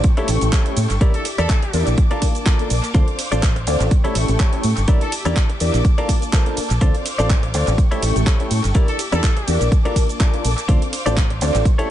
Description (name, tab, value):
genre	filtered disco house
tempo	124 BPM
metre	4/4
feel	swing 55% on 16ths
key	D minor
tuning	A4 = 440 Hz
part	warm studio string section	sustained chords	0.0-11.9 s	Bb3 to D6	-29 LUFS	left 2 dB	sidechain pumping
part	electronic kick drum	drums	0.0-11.8 s	none	-16 LUFS	equal	none
part	house drum kit	drums	0.0-11.9 s	handclaps, hi-hat, ride cymbal, shaker	-27 LUFS	right 2 dB	sidechain pumping on hats, sidechain pumping on perc, sidechain pumping on cymbals, tape echo
part	dark baby grand piano	accompaniment	0.2-11.9 s	A3 to A5	-24 LUFS	left 1 dB	phaser, sidechain pumping, tape echo
part	clean electric guitar	riff	0.2-11.9 s	E4 to D5	-27 LUFS	left 1 dB	sidechain pumping
part	fingered electric bass	bass	0.2-11.8 s	G1 to A2	-19 LUFS	equal	sidechain pumping
part	clear trumpet section	melody	1.1-1.9, 5.0-5.1, 8.9-9.6 s	A4	-30 LUFS	left 1 dB	vintage 12-bit sampler grit, sidechain pumping, tape echo
room	digital ambience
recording	echo-heavy mix, nothing above 10.4 kHz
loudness	-15 LUFS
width	side -12 dB against mid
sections	0.0-11.9 A section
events	none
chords	0.0 A7; 1.0 Em7b5; 2.0 Bbmaj7; 2.9 Dm7; 3.9 A7; 4.9 Em7b5; 5.8 Bbmaj7; 6.8 Dm7; 7.8 A7; 8.8 Em7b5; 9.7 Bbmaj7; 10.7 Dm7